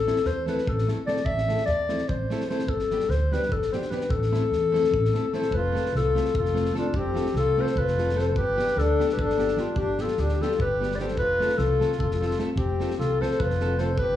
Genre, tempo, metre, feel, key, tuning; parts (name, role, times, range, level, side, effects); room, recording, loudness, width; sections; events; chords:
balkan folk, Balkan wedding band; 297 BPM (eighths); 7/8; straight; A4 = 440 Hz
dark clarinet; melody; 0.0-14.2 s; F4 to E5; -25 LUFS; left 4 dB
upright bass; bass; 0.0-14.2 s; F1 to E2; -28 LUFS; equal
nylon-string guitar; accompaniment; 0.1-13.9 s; G3 to A4; -31 LUFS; equal
loose indie drum kit; percussion; 0.1-14.1 s; kick drum, snare drum; -33 LUFS; equal
accordion; second line; 5.4-14.2 s; C4 to B4; -32 LUFS; right 1 dB
moderate recital hall reverb, RT60 1.5 s; heard from further back in the room, small room ambience; -22 LUFS; side -12 dB against mid
0.0-5.5 A section; 5.5-14.2 B section
0.0 Am; 2.7 G; 4.1 Am; 5.5 F; 8.3 G; 11.2 F